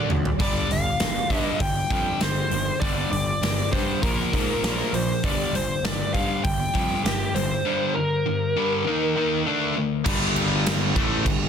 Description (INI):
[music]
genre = hard rock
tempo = 99 BPM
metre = 4/4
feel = straight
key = G minor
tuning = A4 = 441 Hz
[part]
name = biting lead guitar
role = melody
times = 0.0-9.4 s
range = G4 to G5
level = -27 LUFS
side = equal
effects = overdrive, tape echo
[part]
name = overdriven semi-hollow guitar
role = riff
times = 0.0-11.5 s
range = G2 to Eb4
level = -29 LUFS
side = right 10 dB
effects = none
[part]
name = sludgy distorted guitar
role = riff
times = 0.0-11.5 s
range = G2 to Eb4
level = -28 LUFS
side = left 11 dB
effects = overdrive
[part]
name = fuzz picked electric bass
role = bass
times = 0.1-11.5 s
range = G1 to Ab2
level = -29 LUFS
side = equal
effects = overdrive
[part]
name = big rock drum kit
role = drums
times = 0.1-11.4 s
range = crash cymbal, hi-hat, kick drum, snare drum, splash cymbal, toms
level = -26 LUFS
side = equal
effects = none
[part]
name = tight distorted guitar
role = riff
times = 10.0-11.5 s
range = G2 to A3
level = -28 LUFS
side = left 1 dB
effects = distortion
[sound]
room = small room ambience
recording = dense, heavily limited modern master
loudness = -21 LUFS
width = side -7 dB against mid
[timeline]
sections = 0.0-10.1 A section; 10.1-11.5 B section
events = drum fill 0.0-0.4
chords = 0.4 G5; 4.0 Bb5; 5.2 Gm; 8.9 Eb5; 9.5 D5; 10.1 G5